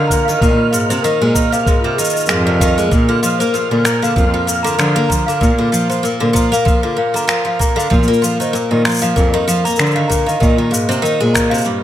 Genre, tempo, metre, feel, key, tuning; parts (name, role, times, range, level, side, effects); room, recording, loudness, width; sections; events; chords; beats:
folktronica; 96 BPM; 4/4; swing 56% on 16ths; Bb mixolydian; A4 = 440 Hz
celesta; second line; 0.0-11.7 s; F4 to Bb5; -19 LUFS; left 1 dB; tape echo
picked twelve-string acoustic guitar; arpeggios; 0.0-11.8 s; G2 to Bb3; -18 LUFS; equal; tape echo
flickering grainy texture; texture; 0.0-11.7 s; F6; -25 LUFS; right 3 dB; built-in reverb
electronic cabasa and finger snaps; drums; 0.1-11.7 s; -21 LUFS; equal; overdrive
electronic kick drum; drums; 0.1-11.5 s; -16 LUFS; equal
warm cello; bass; 0.4-11.3 s; F2 to D3; -18 LUFS; equal
light reverb, studio reverb; -12 LUFS; side -11 dB against mid
0.0-11.8 A section
break 11.7
0.4 Ab; 2.9 Bb; 7.9 Ebsus2/Bb; 10.4 Ab
| 0.41 1.04 1.66 2.29 | 2.91 3.54 4.16 4.79 | 5.41 6.04 6.66 7.29 | 7.91 8.54 9.16 9.79 | 10.41 11.04 11.66